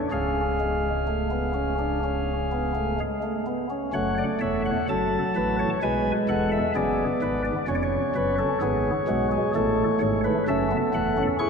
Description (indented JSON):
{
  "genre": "classical, baroque-style 4-part fugue for pipe organ",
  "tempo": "64 BPM",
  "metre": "4/4",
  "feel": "straight",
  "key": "F# minor",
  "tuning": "A4 = 440 Hz",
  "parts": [
    { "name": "chamber organ, flutes", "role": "solo", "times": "0.0-11.5 s", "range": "C#1 to C#6", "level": "-22 LUFS", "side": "equal", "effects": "none" }
  ],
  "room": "wet cathedral reverb, RT60 5.5 s",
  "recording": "none",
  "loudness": "-22 LUFS",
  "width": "side -5 dB against mid",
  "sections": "0.0-3.9 A section; 3.9-11.5 B section",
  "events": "none",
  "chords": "0.1 C#; 3.9 F#m; 5.8 G#m7b5; 7.7 C#7/E#; 9.5 F#m"
}